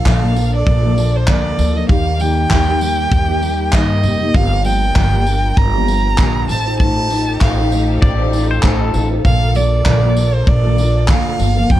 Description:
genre	acoustic pop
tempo	98 BPM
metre	4/4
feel	swing 55% on 16ths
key	unclear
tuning	A4 = 442 Hz
part	warm violin	melody	0.0-11.8 s	C5 to Bb5	-20 LUFS	right 2 dB	plate reverb, digital delay
part	fingerpicked steel-string acoustic guitar	accompaniment	0.0-11.8 s	G2 to C5	-20 LUFS	left 1 dB	double-tracked left and right, plate reverb
part	warm studio string section	sustained chords	0.0-11.8 s	Eb3 to Bb4	-29 LUFS	left 2 dB	plate reverb
part	upright bass	bass	0.1-11.8 s	F1 to G2	-16 LUFS	equal	none
part	modern studio drum kit	drums	0.1-11.8 s	handclaps, kick drum, tambourine	-17 LUFS	equal	none
part	pedal steel guitar	second line	8.0-9.1 s	A4 to D5	-23 LUFS	left 4 dB	plate reverb
room	little or no reverb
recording	dark, warm production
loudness	-12 LUFS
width	side -13 dB against mid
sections	0.0-11.8 A section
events	none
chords	0.0 Bbmaj7; 1.9 Eb; 4.3 Gm7; 6.5 F7/A; 9.3 Bbmaj7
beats	0.06 0.67 1.28 | 1.90 2.51 3.12 3.73 | 4.35 4.96 5.57 6.19 | 6.80 7.41 8.03 8.64 | 9.25 9.87 10.48 11.09 | 11.71

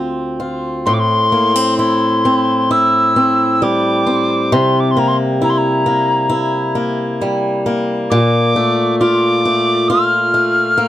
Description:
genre	celtic folk, Celtic slow air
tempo	67 BPM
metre	4/4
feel	rubato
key	unclear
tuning	A4 = 440 Hz
part	picked swing-style acoustic guitar	accompaniment	0.0-10.9 s	D2 to F4	-15 LUFS	equal	none
part	reedy wooden whistle	melody	0.9-10.9 s	Bb5 to F6	-15 LUFS	equal	none
room	little or no reverb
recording	dry, close 1970s-style studio recording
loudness	-12 LUFS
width	side -13 dB against mid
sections	0.9-10.9 A section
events	none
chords	0.0 Dm7; 0.9 Am7; 4.5 C7; 8.1 Bbmaj7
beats	| 0.86 1.78 2.70 3.62 | 4.53 5.42 6.31 7.21 | 8.11 9.00 9.89 10.78

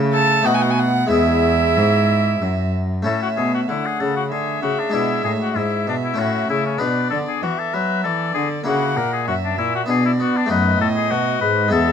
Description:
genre	classical, baroque-style sonata movement with continuo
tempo	96 BPM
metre	3/4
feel	straight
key	E major, A major from 3.1 s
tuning	A4 = 442 Hz
part	harpsichord	accompaniment	0.0-11.9 s	E2 to E4	-22 LUFS	left 3 dB	none
part	warm cello	bass	0.0-11.9 s	E2 to B3	-22 LUFS	right 2 dB	none
part	clear oboe	melody	0.1-11.9 s	C#4 to B4	-22 LUFS	left 9 dB	none
part	rich violin	second line	0.1-11.9 s	D5 to A5	-24 LUFS	right 6 dB	none
room	light reverb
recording	close, detailed microphones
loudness	-17 LUFS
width	side -8 dB against mid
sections	0.0-3.1 A section; 3.1-11.9 A section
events	none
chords	0.5 B7; 1.1 E; 3.1 A; 4.9 E7; 6.2 A; 6.8 Bm; 8.7 F#7; 9.9 Bm; 10.5 B7/F#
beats	0.46 | 1.11 1.77 2.42 | 3.06 3.69 4.31 | 4.93 5.56 6.18 | 6.81 7.43 8.04 | 8.66 9.28 9.89 | 10.51 11.12 11.73

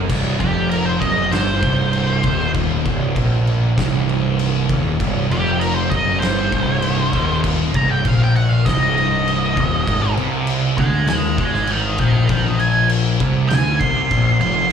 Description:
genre	stoner and doom metal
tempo	98 BPM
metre	4/4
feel	straight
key	C minor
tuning	A4 = 440 Hz
part	thick fuzz guitar	riff	0.0-14.7 s	C2 to Eb3	-20 LUFS	left 5 dB	distortion
part	thick fuzz guitar	riff	0.0-14.7 s	C2 to Eb3	-23 LUFS	right 10 dB	distortion
part	fuzz picked electric bass	bass	0.0-14.7 s	C1 to Eb2	-23 LUFS	right 1 dB	overdrive, tube saturation
part	oversized low-tuned drum kit	drums	0.1-14.6 s	crash cymbal, kick drum, snare drum	-23 LUFS	equal	none
part	octave-fuzz lead guitar	melody	0.4-14.7 s	G4 to C6	-21 LUFS	right 1 dB	wah, distortion, slapback echo, digital delay
room	small room ambience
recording	live gig heard through the venue's PA, club reverb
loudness	-15 LUFS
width	side -7 dB against mid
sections	0.1-14.7 A section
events	lead electric guitar solo 0.1-14.7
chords	0.1 Cm; 9.9 Ab5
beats	| 0.09 0.71 1.32 1.93 | 2.55 3.16 3.77 4.38 | 5.00 5.61 6.22 6.83 | 7.44 8.05 8.65 9.26 | 9.87 10.48 11.08 11.69 | 12.29 12.90 13.51 14.11 | 14.72

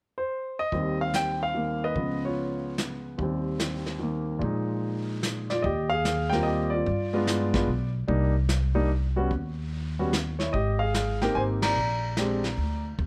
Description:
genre	jazz piano trio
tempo	147 BPM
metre	3/4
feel	swing 66% on 8ths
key	Eb major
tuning	A4 = 440 Hz
part	warm concert grand piano	melody	0.2-12.8 s	Db2 to Bb5	-30 LUFS	equal	plate reverb
part	vintage brush drum kit	drums	0.7-13.1 s	brushed snare drum, hi-hat, kick drum, ride cymbal, snare drum	-34 LUFS	equal	none
part	upright bass	bass	5.6-13.1 s	Ab1 to G2	-30 LUFS	equal	none
room	light reverb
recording	none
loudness	-27 LUFS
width	mono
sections	0.7-5.6 A section; 5.6-13.1 B section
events	band accent 11.6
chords	0.0 N.C.; 0.7 Eb6; 2.0 Db7; 3.2 Eb6; 4.4 Bb7sus4; 5.6 Eb69; 6.9 G7b9; 8.1 Cm9; 9.3 Eb7(no3); 10.5 Abmaj9; 11.8 Bb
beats	0.31 | 0.72 1.13 1.54 | 1.95 2.36 2.77 | 3.18 3.59 4.00 | 4.41 4.82 5.23 | 5.64 6.05 6.46 | 6.87 7.28 7.68 | 8.09 8.50 8.91 | 9.32 9.73 10.13 | 10.54 10.95 11.36 | 11.77 12.17 12.58 | 12.99

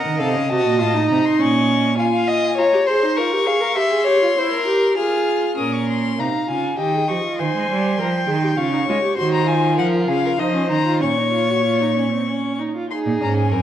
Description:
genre	classical, baroque-style fugue for string quartet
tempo	100 BPM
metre	3/4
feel	straight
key	Bb minor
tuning	A4 = 440 Hz
part	rich violin	melody	0.0-13.6 s	Eb5 to F6	-24 LUFS	left 6 dB	none
part	warm violin	second line	0.0-13.6 s	Ab4 to Ab5	-22 LUFS	left 3 dB	none
part	rich viola	accompaniment	0.0-13.6 s	C4 to C5	-21 LUFS	right 1 dB	none
part	clear cello	bass	0.1-2.0, 5.6-13.6 s	Gb2 to Ab3	-22 LUFS	right 4 dB	none
room	wet recital hall reverb, RT60 1.4 s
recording	worn, warbling old tape, cassette tape, warbly pitch drift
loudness	-16 LUFS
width	side -10 dB against mid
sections	0.0-5.6 A section; 5.6-12.9 B section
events	none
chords	0.2 F7; 1.4 Bbm; 2.0 Fm; 3.2 Gm7b5/F; 3.8 C7; 5.0 Fm; 5.6 Bbm; 6.8 Eb7; 7.4 Ab/Eb; 8.6 Db; 9.2 Cdim/Eb; 9.8 Bbm/F; 10.4 F5; 11.0 Bbm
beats	| 0.20 0.80 1.39 | 1.98 2.58 3.17 | 3.77 4.37 4.97 | 5.58 6.19 6.80 | 7.39 7.99 8.58 | 9.18 9.78 10.39 | 11.02 11.66 12.28 | 12.91 13.52

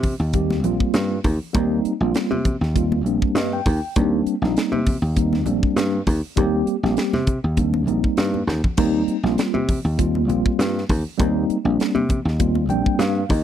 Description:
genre	electric jazz fusion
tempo	100 BPM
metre	4/4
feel	swing 54% on 16ths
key	Eb major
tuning	A4 = 440 Hz
part	mellow tine electric piano	accompaniment	0.0-13.4 s	G3 to G5	-22 LUFS	equal	medium stereo tremolo
part	dry thumbed slap bass	bass	0.0-13.4 s	Bb1 to C3	-22 LUFS	equal	none
part	crisp fusion drum kit	drums	0.0-13.4 s	crash cymbal, hi-hat, kick drum, snare drum	-24 LUFS	equal	none
part	congas	percussion	0.0-13.4 s	none	-27 LUFS	left 3 dB	none
room	small room reverb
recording	dry, close 1970s-style studio recording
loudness	-18 LUFS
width	side -10 dB against mid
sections	0.0-13.4 A section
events	tine electric piano fill 3.1-4.0, 12.4-13.4; drum fill 8.3-8.8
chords	0.0 Eb69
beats	0.34 0.94 | 1.54 2.15 2.75 3.35 | 3.96 4.56 5.16 5.77 | 6.37 6.97 7.58 8.18 | 8.78 9.38 9.98 10.59 | 11.19 11.79 12.39 13.00

